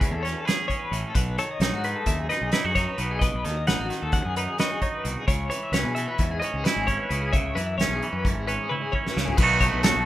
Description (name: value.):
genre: math rock and midwest emo.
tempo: 262 BPM (eighths).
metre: 9/8.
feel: straight.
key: unclear.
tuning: A4 = 437 Hz.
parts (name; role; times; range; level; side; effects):
clean electric guitar; melody; 0.0-8.9 s; G#4 to F#5; -31 LUFS; left 1 dB; none.
twangy electric guitar; accompaniment; 0.0-10.1 s; E2 to G#4; -28 LUFS; right 4 dB; none.
twelve-string electric guitar; arpeggios; 0.0-10.1 s; F#4 to E5; -31 LUFS; left 6 dB; tremolo.
fuzz fingered electric bass; bass; 0.0-10.1 s; G#1 to B2; -29 LUFS; equal; overdrive.
loose indie drum kit; drums; 0.0-9.9 s; crash cymbal, hi-hat, kick drum, snare drum, toms; -26 LUFS; equal; none.
room: light reverb.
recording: rough home demo mix.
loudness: -22 LUFS.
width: side -14 dB against mid.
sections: 0.0-9.4 A section.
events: drum fill 8.7-9.4.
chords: 0.0 Amaj7; 1.2 B7; 5.3 C#m7; 9.4 B7.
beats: 0.01 0.24 0.47 0.70 0.93 | 1.15 1.38 1.61 1.84 2.07 2.30 2.53 2.76 2.98 | 3.21 3.44 3.67 3.90 4.13 4.36 4.59 4.81 5.04 | 5.27 5.50 5.73 5.96 6.19 6.41 6.64 6.87 7.10 | 7.33 7.56 7.79 8.01 8.24 8.47 8.70 8.92 9.15 | 9.38 9.61 9.84.